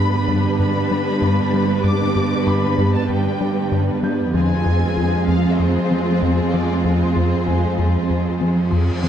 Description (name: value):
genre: cinematic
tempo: 96 BPM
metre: 4/4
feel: straight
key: unclear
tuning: A4 = 442 Hz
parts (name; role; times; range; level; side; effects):
- warm symphonic violin section; melody; 0.0-9.0 s; C5 to D6; -28 LUFS; left 2 dB; none
- rich symphonic violin section; second line; 0.0-9.1 s; D4 to B4; -29 LUFS; left 1 dB; none
- rich symphonic viola section; accompaniment; 0.0-9.1 s; G3 to C4; -25 LUFS; right 1 dB; none
- glassy FM pad; sustained chords; 0.0-9.1 s; D3 to B4; -24 LUFS; right 1 dB; ensemble chorus, built-in reverb
- resonant blip pluck; arpeggios; 0.0-9.1 s; F3 to G4; -28 LUFS; left 4 dB; none
- rubbery square bass; riff; 0.0-9.1 s; F2 to G3; -22 LUFS; left 2 dB; none
- rich symphonic cello section; bass; 0.0-9.1 s; F2 to G2; -21 LUFS; right 3 dB; none
- clear baby grand piano; texture; 2.5-9.1 s; Ab5 to G6; -35 LUFS; right 1 dB; none
- reverse cymbal; sound effects; 8.5-9.1 s; none; -34 LUFS; equal; none
room: moderate scoring stage reverb, RT60 1.6 s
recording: none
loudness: -16 LUFS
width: side -9 dB against mid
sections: 0.0-9.1 A section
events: reverse cymbal 8.5-9.1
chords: 0.0 G; 4.3 Fm